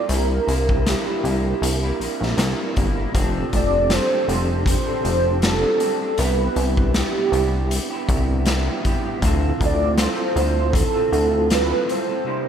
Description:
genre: indie pop, bedroom pop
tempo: 79 BPM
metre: 4/4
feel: swing 55% on 16ths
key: C major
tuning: A4 = 440 Hz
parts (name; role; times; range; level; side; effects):
- warm velvety synth lead; melody; 0.0-12.5 s; G4 to D5; -22 LUFS; right 2 dB; analog chorus, slapback echo
- electric guitar through a small old amp; accompaniment; 0.0-12.5 s; C3 to A4; -28 LUFS; left 2 dB; lush chorus, warbly pitch drift
- mellow tonewheel organ; accompaniment; 0.0-12.5 s; C3 to Bb4; -27 LUFS; right 6 dB; chorus vibrato, slow rotary speaker
- chorused synth bass; bass; 0.1-11.7 s; F1 to D2; -22 LUFS; left 1 dB; none
- raw garage drum kit; drums; 0.1-12.1 s; hi-hat, kick drum, snare drum; -24 LUFS; left 1 dB; none
room: light reverb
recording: none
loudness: -18 LUFS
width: side -8 dB against mid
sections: 0.0-12.5 A section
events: none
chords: 0.1 C7; 3.1 F6; 6.2 Cmaj7; 9.2 Dm7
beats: | 0.10 0.86 1.62 2.38 | 3.14 3.90 4.66 5.42 | 6.18 6.94 7.71 8.47 | 9.23 9.99 10.75 11.51 | 12.27

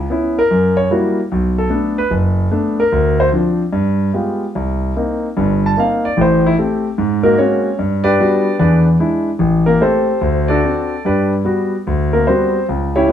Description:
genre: solo jazz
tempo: 148 BPM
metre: 4/4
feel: swing 66% on 8ths, rubato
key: G major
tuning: A4 = 440 Hz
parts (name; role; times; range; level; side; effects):
- warm concert grand piano; solo; 0.0-13.1 s; F#1 to A5; -13 LUFS; equal; none
room: wet studio reverb, RT60 0.9 s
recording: band playing live in one room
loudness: -13 LUFS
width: side -9 dB against mid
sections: 0.0-11.1 A section; 11.1-13.1 A section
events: grand piano solo 0.0-13.1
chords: 0.0 C#m7; 0.5 F#7b9; 1.3 Bm7; 2.9 Dm7; 3.7 G7b9; 4.6 Cm7; 6.2 Am7; 7.0 Ab9; 7.8 Gmaj7; 8.6 E7; 9.4 Am7; 10.2 D7; 11.1 Gmaj7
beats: 0.11 0.51 0.91 | 1.31 1.71 2.11 2.52 | 2.92 3.33 3.74 4.15 | 4.57 4.97 5.38 5.78 | 6.19 6.59 6.99 7.39 | 7.79 8.19 8.59 9.00 | 9.41 9.81 10.22 10.64 | 11.05 11.47 11.87 12.28 | 12.69 13.09

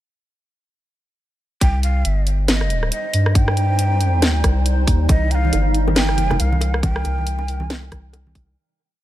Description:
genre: deep dubstep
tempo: 138 BPM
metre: 4/4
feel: swing 58% on 16ths, half-time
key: C minor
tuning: A4 = 442 Hz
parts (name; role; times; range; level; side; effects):
- breathy hollow shakuhachi; melody; 1.6-8.1 s; Eb5 to G5; -26 LUFS; right 2 dB; dub echo
- granular cloud pad; sustained chords; 2.6-8.5 s; G3 to C5; -27 LUFS; left 1 dB; built-in reverb
- soft dub sub bass; bass; 1.6-8.6 s; G1 to G2; -18 LUFS; equal; none
- electronic kick drum; drums; 1.6-8.5 s; none; -17 LUFS; equal; none
- garage drum kit; drums; 1.6-8.5 s; hi-hat, rim click, snare drum; -22 LUFS; equal; none
- congas and bongos; percussion; 5.1-8.5 s; none; -27 LUFS; right 2 dB; none
room: little or no reverb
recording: none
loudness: -16 LUFS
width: side -14 dB against mid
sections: 1.6-8.6 drop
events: drop 1.6-8.6; fade-out 6.3-8.6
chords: 1.6 Cm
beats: | 1.61 2.05 2.48 2.92 | 3.35 3.79 4.22 4.66 | 5.09 5.53 5.96 6.40 | 6.83 7.27 7.70 8.13

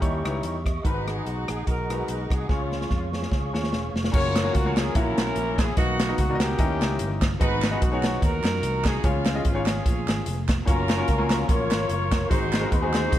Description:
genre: uptempo gospel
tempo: 147 BPM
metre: 4/4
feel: swing 55% on 8ths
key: F# major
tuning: A4 = 440 Hz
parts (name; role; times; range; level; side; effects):
- mellow horn section; melody; 0.0-13.2 s; G#3 to C#5; -28 LUFS; equal; slapback echo
- bright upright piano; accompaniment; 0.0-13.2 s; G#2 to D#5; -30 LUFS; left 2 dB; none
- mellow tonewheel organ; sustained chords; 0.0-4.1, 10.7-13.2 s; G4 to C#6; -34 LUFS; right 2 dB; fast rotary speaker, chorus vibrato
- fingered electric bass; bass; 0.0-13.2 s; E1 to F#2; -29 LUFS; equal; none
- swinging big-band drum kit; drums; 0.0-13.2 s; crash cymbal, hi-hat, kick drum, rim click, snare drum; -25 LUFS; equal; none
- group handclap; percussion; 4.4-13.0 s; none; -36 LUFS; right 8 dB; none
room: light reverb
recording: dark, warm production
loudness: -22 LUFS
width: side -12 dB against mid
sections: 0.0-4.1 A section; 4.1-13.2 B section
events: drum fill 2.5-4.1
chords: 0.0 D#7b9; 0.8 G#m7; 2.5 C#; 4.1 F#maj7; 5.0 F#7/A#; 5.8 Bmaj7; 6.6 D#7b9; 7.4 G#m7; 9.0 C#; 10.7 F#maj7; 12.3 G#7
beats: 0.02 0.43 | 0.84 1.25 1.67 2.08 | 2.49 2.90 3.31 3.73 | 4.14 4.55 4.96 5.36 | 5.77 6.18 6.59 7.00 | 7.41 7.81 8.22 8.63 | 9.04 9.45 9.86 10.26 | 10.67 11.08 11.49 11.90 | 12.30 12.71 13.12

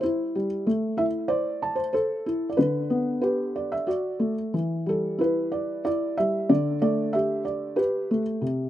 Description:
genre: children's music, lullaby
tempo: 93 BPM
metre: 3/4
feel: straight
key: G major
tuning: A4 = 440 Hz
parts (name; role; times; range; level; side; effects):
- felt-muted upright piano; solo; 0.0-8.7 s; C3 to A5; -23 LUFS; equal; none
room: little or no reverb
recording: recorded outdoors, with no room sound, nothing above 10.4 kHz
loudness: -23 LUFS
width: side -12 dB against mid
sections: 0.0-8.7 A section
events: none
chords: 0.0 C; 0.7 Am; 2.6 G/D; 3.9 D; 4.5 Em7; 6.5 Gsus2/D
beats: 0.02 | 0.66 1.29 1.93 | 2.58 3.22 3.88 | 4.54 5.19 5.83 | 6.48 7.12 7.77 | 8.41

